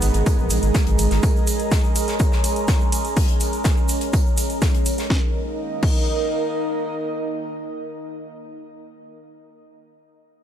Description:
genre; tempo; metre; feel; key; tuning
melodic techno; 124 BPM; 4/4; straight; unclear; A4 = 441 Hz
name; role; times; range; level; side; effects
evolving wavetable pad; sustained chords; 0.0-8.1 s; Eb3 to Bb4; -26 LUFS; right 2 dB; phaser, built-in reverb, sidechain pumping
round analog bass; bass; 0.0-1.2 s; Ab1 to Bb1; -20 LUFS; equal; sidechain pumping
house drum kit; drums; 0.0-6.0 s; crash cymbal, hi-hat, snare drum; -29 LUFS; equal; overdrive, sidechain pumping on hats, sidechain pumping on toms, sidechain pumping on cymbals
modern studio drum kit; drums; 0.0-5.1 s; hi-hat, snare drum, tambourine; -32 LUFS; left 2 dB; high-pass filter on hats, high-pass filter on snare, high-pass filter on perc, high-pass filter on room
egg shaker; percussion; 0.0-5.1 s; none; -32 LUFS; right 4 dB; none
downlifter; sound effects; 0.0-1.2 s; none; barely audible; none; none
airy breathy pad; texture; 0.0-8.3 s; Eb4 to Bb5; -30 LUFS; right 1 dB; chorus, sidechain pumping
electronic kick drum; drums; 0.3-6.0 s; none; -19 LUFS; equal; overdrive
room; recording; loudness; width
light reverb, digital ambience; none; -18 LUFS; side -10 dB against mid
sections
0.0-5.1 A section; 5.1-9.0 B section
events
fade-out on analog synth pad 0.0-5.1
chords
0.0 Ab5; 5.1 Eb5

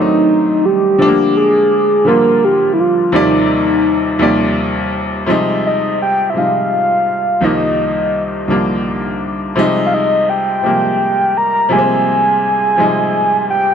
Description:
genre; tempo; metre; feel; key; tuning
R&B; 56 BPM (dotted quarters); 6/8; straight; unclear; A4 = 440 Hz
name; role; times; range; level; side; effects
soft octave-layered synth lead; melody; 0.0-13.7 s; Eb4 to Bb5; -13 LUFS; equal; chorus, tape echo
bright grand piano; accompaniment; 0.0-13.7 s; C2 to D5; -16 LUFS; left 1 dB; none
room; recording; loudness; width
light reverb, studio reverb; none; -12 LUFS; side -8 dB against mid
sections
0.0-5.3 A section; 5.3-13.7 B section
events
none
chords
0.0 D7b9; 1.0 Gm7; 3.1 Ebmaj13; 5.3 Fm9/C; 7.4 Cm11; 9.6 Bb13sus4

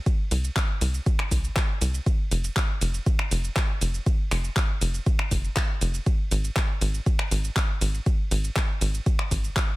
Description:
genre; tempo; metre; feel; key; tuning
progressive house; 120 BPM; 4/4; straight; F minor; A4 = 440 Hz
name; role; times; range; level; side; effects
deep house drum kit; drums; 0.1-9.7 s; finger snaps, handclaps, hi-hat, ride cymbal, shaker; -30 LUFS; equal; overdrive
electronic kick drum; drums; 0.1-9.7 s; none; -24 LUFS; equal; overdrive
tight sequencer bass; bass; 0.3-9.5 s; F1 to C2; -25 LUFS; equal; sidechain pumping
room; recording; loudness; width
little or no reverb; none; -23 LUFS; side -19 dB against mid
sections
0.0-9.8 A section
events
none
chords
none

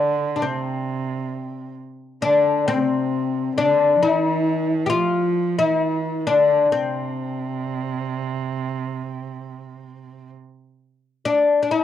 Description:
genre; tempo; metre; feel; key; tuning
Arabic maqam ensemble; 133 BPM (eighths); 10/8; straight; unclear; A4 = 440 Hz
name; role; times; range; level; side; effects
oud; melody; 0.0-11.8 s; C4 to G4; -19 LUFS; left 4 dB; cassette tape
warm cello; second line; 0.0-10.3 s; C3 to F3; -27 LUFS; right 8 dB; cassette tape
room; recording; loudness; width
moderate studio reverb, RT60 0.6 s; home recording on cassette; -19 LUFS; side -10 dB against mid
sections
0.0-11.2 A section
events
none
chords
none

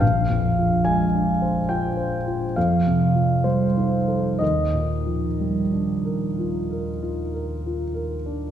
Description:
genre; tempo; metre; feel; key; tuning
classical, impressionist solo piano; 60-72 BPM; 5/4; rubato; Eb major; A4 = 438 Hz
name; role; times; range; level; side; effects
warm grand piano; solo; 0.0-8.5 s; Bb1 to Ab5; -20 LUFS; equal; none
room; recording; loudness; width
wet concert hall reverb, RT60 1.8 s; heard from further back in the room; -20 LUFS; side -9 dB against mid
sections
0.0-8.5 A section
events
none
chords
0.0 Bb13; 2.6 F9; 4.4 Ebmaj9

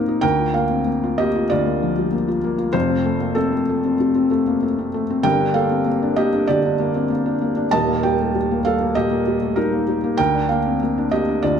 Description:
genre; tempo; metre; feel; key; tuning
neoclassical minimalist piano; 97 BPM; 4/4; rubato; unclear; A4 = 442 Hz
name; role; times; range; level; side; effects
felt-muted upright piano; solo; 0.0-11.6 s; Eb1 to A5; -17 LUFS; equal; none
room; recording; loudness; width
moderate recital hall reverb, RT60 1.5 s; none; -17 LUFS; side -7 dB against mid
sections
0.0-11.6 A section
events
none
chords
0.2 Bb/D; 2.7 F; 5.2 Gmadd9; 7.7 Eb; 10.2 Bb/D

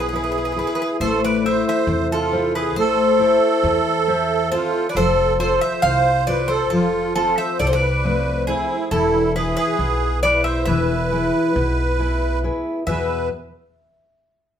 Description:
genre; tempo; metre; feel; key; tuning
greek folk, Greek bouzouki band; 136 BPM (eighths); 9/8; straight; E phrygian dominant; A4 = 440 Hz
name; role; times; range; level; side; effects
Greek bouzouki; melody; 0.0-13.3 s; G#4 to F5; -21 LUFS; left 1 dB; none
musette accordion; second line; 0.0-13.3 s; E4 to C5; -22 LUFS; right 4 dB; none
fingerpicked steel-string acoustic guitar; accompaniment; 0.0-13.3 s; E2 to E5; -23 LUFS; left 2 dB; none
upright bass; bass; 0.0-13.3 s; E1 to E2; -25 LUFS; equal; none
room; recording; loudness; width
wet studio reverb, RT60 0.8 s; band playing live in one room; -17 LUFS; side -9 dB against mid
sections
0.0-12.9 A section; 12.9-14.6 B section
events
none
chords
0.0 E; 1.0 Am; 5.0 F; 8.9 E

